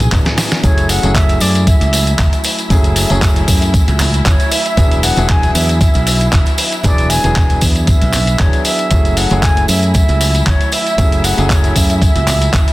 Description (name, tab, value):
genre	nu-disco, nu disco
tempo	116 BPM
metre	4/4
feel	swing 55% on 16ths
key	F# minor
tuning	A4 = 440 Hz
part	mellow concert flute	melody	0.0-12.7 s	C#5 to G#5	-20 LUFS	right 1 dB	analog delay
part	dark grand piano	accompaniment	0.0-12.7 s	F#3 to G#4	-20 LUFS	equal	sidechain pumping, slapback echo
part	dark symphonic string section	sustained chords	0.0-12.7 s	E4 to G#5	-25 LUFS	equal	sidechain pumping
part	modern bright fingered electric bass	bass	0.0-12.6 s	E1 to F#2	-16 LUFS	equal	sidechain pumping
part	dusty soul sampler-style drum kit	drums	0.0-12.7 s	handclaps, hi-hat, snare drum, tambourine, toms	-18 LUFS	equal	none
part	tambourine and congas	percussion	0.0-12.7 s	none	-24 LUFS	right 2 dB	none
part	electronic kick drum	drums	0.1-12.6 s	none	-13 LUFS	equal	none
room	small room ambience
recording	dense, heavily limited modern master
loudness	-10 LUFS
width	side -18 dB against mid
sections	0.0-12.7 A section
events	drum fill 0.0-0.6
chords	0.0 E7; 0.6 F#m9; 4.8 E7; 8.9 F#m9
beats	0.12 | 0.64 1.16 1.67 2.19 | 2.71 3.22 3.74 4.26 | 4.78 5.29 5.81 6.33 | 6.84 7.36 7.88 8.40 | 8.91 9.43 9.95 10.46 | 10.98 11.50 12.02 12.53